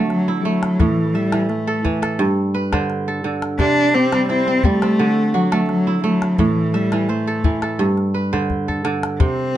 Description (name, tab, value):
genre	west african traditional, West African string and xylophone music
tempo	86 BPM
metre	4/4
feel	straight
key	unclear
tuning	A4 = 439 Hz
part	dark cello	melody	0.0-9.6 s	E3 to D4	-18 LUFS	left 1 dB	plate reverb
part	kora	arpeggios	0.0-9.6 s	G2 to E5	-19 LUFS	right 2 dB	none
part	calabash	percussion	0.1-9.4 s	none	-21 LUFS	left 2 dB	none
room	light reverb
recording	nothing above 11.0 kHz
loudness	-16 LUFS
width	side -12 dB against mid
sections	0.0-9.6 A section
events	drum fill 8.3-9.2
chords	0.0 D; 0.8 A5; 2.2 G; 3.6 C; 5.0 D; 6.4 Am; 7.8 G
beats	0.10 | 0.79 1.49 2.19 2.89 | 3.59 4.29 4.99 5.69 | 6.39 7.09 7.79 8.49 | 9.20